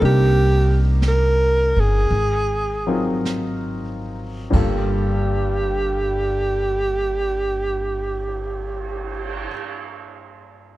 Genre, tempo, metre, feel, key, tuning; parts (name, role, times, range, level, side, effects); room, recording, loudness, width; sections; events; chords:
jazz ballad; 45-61 BPM; 4/4; swing 69% on 8ths; G minor; A4 = 440 Hz
breathy alto saxophone; melody; 0.0-9.5 s; G4 to Bb4; -22 LUFS; right 2 dB
warm upright piano; accompaniment; 0.0-10.8 s; G2 to Bb4; -26 LUFS; left 2 dB
upright bass; bass; 0.0-9.5 s; G1 to C2; -21 LUFS; equal
jazz brush drum kit; drums; 0.0-9.6 s; brushed snare drum, crash cymbal, cymbal swell, hi-hat, kick drum, snare drum; -29 LUFS; right 2 dB
little or no reverb; dark, warm production; -18 LUFS; side -16 dB against mid
0.0-4.5 A section; 4.5-9.8 B section
slowing down 0.0-4.5
0.0 Cm9; 2.1 Ab13; 4.5 Gm9